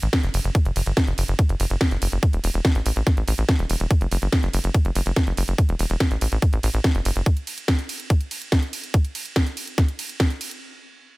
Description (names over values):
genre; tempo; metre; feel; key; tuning
psychedelic trance; 143 BPM; 4/4; straight; unclear; A4 = 440 Hz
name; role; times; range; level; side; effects
tight sequencer bass; bass; 0.0-7.2 s; E1 to A1; -22 LUFS; equal; none
drum and bass drum kit; drums; 0.0-10.6 s; hi-hat, ride cymbal, snare drum; -27 LUFS; equal; overdrive
electronic kick drum; drums; 0.1-10.3 s; none; -19 LUFS; equal; overdrive
room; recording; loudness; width
little or no reverb; none; -20 LUFS; side -22 dB against mid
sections
0.0-10.6 A section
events
drop 0.0-10.6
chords
none